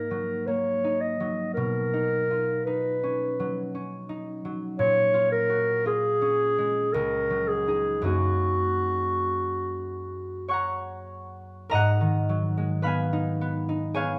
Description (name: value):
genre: classical, impressionist duo for clarinet and harp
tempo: 45-57 BPM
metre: 3/4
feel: rubato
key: unclear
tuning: A4 = 440 Hz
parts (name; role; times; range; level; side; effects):
- mellow clarinet; melody; 0.0-10.5 s; F#4 to D#5; -27 LUFS; equal; none
- concert harp; accompaniment; 0.0-14.2 s; C#2 to C#6; -30 LUFS; equal; none
room: moderate recital hall reverb, RT60 1.5 s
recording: none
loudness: -26 LUFS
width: mono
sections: 0.0-11.7 A section; 11.7-14.2 B section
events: none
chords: 0.0 G#7sus2; 1.6 Badd9; 4.8 A#m7; 6.9 C#sus24; 8.1 F#add9; 11.7 G#m7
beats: 0.47 | 1.56 2.67 3.74 | 4.80 5.87 6.94 | 8.06 9.23 10.52 | 11.73 12.86 13.96